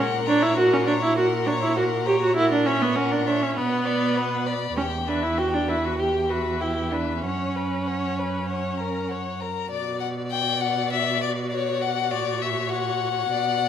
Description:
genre	quick classical-period movement for string quartet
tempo	99 BPM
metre	4/4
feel	straight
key	B minor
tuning	A4 = 438 Hz
part	rich violin	melody	0.0-13.7 s	C#5 to B5	-28 LUFS	left 10 dB	none
part	rich violin	second line	0.0-13.7 s	G4 to D5	-30 LUFS	left 3 dB	none
part	rich viola	accompaniment	0.0-13.7 s	B3 to G4	-24 LUFS	right 2 dB	none
part	warm cello	bass	0.0-13.7 s	E2 to B2	-30 LUFS	right 4 dB	none
room	wet recital hall reverb, RT60 1.5 s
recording	none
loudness	-21 LUFS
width	side -9 dB against mid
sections	0.0-9.7 A section; 9.7-13.7 B section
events	none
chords	0.0 F#/A#; 2.4 F#7/A#; 3.6 Bm; 4.8 Em; 7.2 F#sus4; 9.7 Bm; 12.1 F#/A#

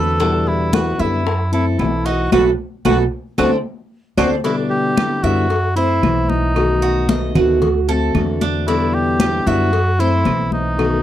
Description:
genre	latin, Cuban son and guajira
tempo	113 BPM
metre	4/4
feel	straight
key	E minor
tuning	A4 = 440 Hz
part	mellow cor anglais	melody	0.0-11.0 s	D#4 to A4	-21 LUFS	right 1 dB	none
part	fingerpicked plugged-in steel-string acoustic guitar	accompaniment	0.0-11.0 s	B2 to F#4	-20 LUFS	left 3 dB	none
part	Cuban tres	arpeggios	0.0-10.5 s	D4 to E5	-22 LUFS	right 6 dB	none
part	upright bass	bass	0.0-11.0 s	B1 to F#2	-20 LUFS	right 1 dB	tube saturation
part	bongos and cowbell	percussion	0.2-11.0 s	none	-26 LUFS	left 6 dB	none
part	congas	percussion	0.2-11.0 s	none	-22 LUFS	left 2 dB	none
part	claves	percussion	0.7-11.0 s	none	-30 LUFS	right 31 dB	none
room	little or no reverb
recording	dry, close 1970s-style studio recording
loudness	-15 LUFS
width	side -12 dB against mid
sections	0.0-4.4 A section; 4.4-11.0 B section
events	band accent 2.3-4.4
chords	0.2 Em7; 1.3 F#m7b5; 2.3 B5; 3.4 D7; 4.4 Em7; 5.5 F#m7b5; 6.6 B7; 7.6 D7; 8.7 Em7; 9.7 F#m7b5

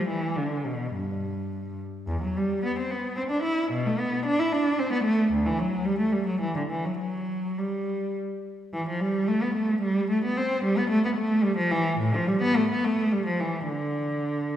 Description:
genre	classical, baroque-style suite movement for unaccompanied cello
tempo	101-114 BPM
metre	3/4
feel	rubato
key	G major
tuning	A4 = 440 Hz
part	rich cello	solo	0.0-14.6 s	D2 to E4	-24 LUFS	equal	none
room	wet scoring stage reverb, RT60 1.8 s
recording	heard from further back in the room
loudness	-24 LUFS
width	side -10 dB against mid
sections	0.0-8.7 A section; 8.7-14.6 A section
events	none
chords	none

